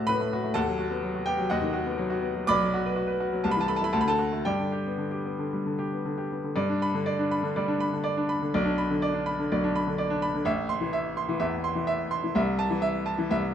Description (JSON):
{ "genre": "classical, virtuoso piano study", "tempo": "112-128 BPM", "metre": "4/4", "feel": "rubato", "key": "G major", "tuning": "A4 = 440 Hz", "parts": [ { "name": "bright grand piano", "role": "solo", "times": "0.0-13.5 s", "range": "A1 to D6", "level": "-25 LUFS", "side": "equal", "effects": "none" } ], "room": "moderate recital hall reverb, RT60 1.5 s", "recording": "close, detailed microphones", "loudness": "-25 LUFS", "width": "side -9 dB against mid", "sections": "0.0-6.6 A section; 6.6-13.5 B section", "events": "none", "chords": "0.0 D; 0.6 B7/D#; 2.5 Bm; 3.4 Am/C; 3.9 D; 4.5 G; 8.5 Bm; 10.5 Am; 12.4 Am/C" }